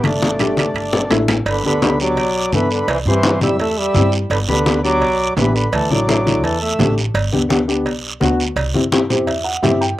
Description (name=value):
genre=latin, cumbia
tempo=169 BPM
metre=4/4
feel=straight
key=G major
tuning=A4 = 440 Hz
part: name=warm French horn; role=melody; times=0.0-7.0 s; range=D3 to A3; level=-20 LUFS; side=right 1 dB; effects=slapback echo
part: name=mellow accordion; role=second line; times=0.0-6.9 s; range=D4 to E5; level=-24 LUFS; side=equal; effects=none
part: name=upright bass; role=bass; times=0.0-9.9 s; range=G1 to G2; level=-22 LUFS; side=right 1 dB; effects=none
part: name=congas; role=percussion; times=0.0-9.8 s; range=none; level=-20 LUFS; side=left 2 dB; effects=none
part: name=guiro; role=percussion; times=0.0-10.0 s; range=none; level=-27 LUFS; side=right 4 dB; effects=slapback echo
part: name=timbales and cowbell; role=percussion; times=0.0-9.8 s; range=none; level=-24 LUFS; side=right 4 dB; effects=slapback echo
part: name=dark upright piano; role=accompaniment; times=0.4-10.0 s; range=A3 to G5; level=-19 LUFS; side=left 2 dB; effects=slapback echo
room=little or no reverb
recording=recorded outdoors, with no room sound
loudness=-14 LUFS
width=side -15 dB against mid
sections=0.0-1.5 A section; 1.5-10.0 B section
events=drum fill 0.0-1.5; upright piano fill 8.9-10.0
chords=0.0 Gsus2; 1.5 G; 2.9 C; 4.3 G; 5.7 Dsus2; 7.2 G; 8.6 C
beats=| 0.04 0.40 0.75 1.11 | 1.46 1.82 2.17 2.53 | 2.88 3.24 3.60 3.95 | 4.31 4.66 5.02 5.37 | 5.73 6.08 6.44 6.80 | 7.15 7.51 7.86 8.22 | 8.57 8.93 9.29 9.64